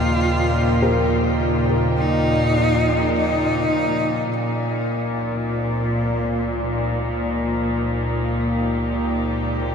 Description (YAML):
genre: ambient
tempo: 52 BPM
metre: 4/4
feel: straight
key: Db lydian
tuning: A4 = 441 Hz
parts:
  - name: clear cello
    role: melody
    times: 0.0-9.7 s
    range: Ab3 to F4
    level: -25 LUFS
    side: left 1 dB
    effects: shimmer reverb, ping-pong delay
  - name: rich chamber string section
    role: sustained chords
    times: 0.0-9.7 s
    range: Bb2 to G5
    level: -20 LUFS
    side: equal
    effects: low-pass filter, shimmer reverb
  - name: felt-muted upright piano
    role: arpeggios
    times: 0.0-4.3 s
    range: Bb4 to C5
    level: -28 LUFS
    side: left 4 dB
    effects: shimmer reverb, ping-pong delay
  - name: warm sub bass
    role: bass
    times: 0.0-9.7 s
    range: Db2 to Eb2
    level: -27 LUFS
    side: equal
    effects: none
  - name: organ-like drone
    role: drone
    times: 0.0-4.4 s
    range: Db3 to F3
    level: -30 LUFS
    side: right 2 dB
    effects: ensemble chorus, built-in reverb, phaser
room: wet huge ambient reverb, RT60 8.6 s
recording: dreamy mix soaked in reverb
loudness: -18 LUFS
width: side -6 dB against mid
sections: 0.0-4.3 A section; 4.3-9.7 B section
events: none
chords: 0.0 Ebadd9; 4.3 Dbadd9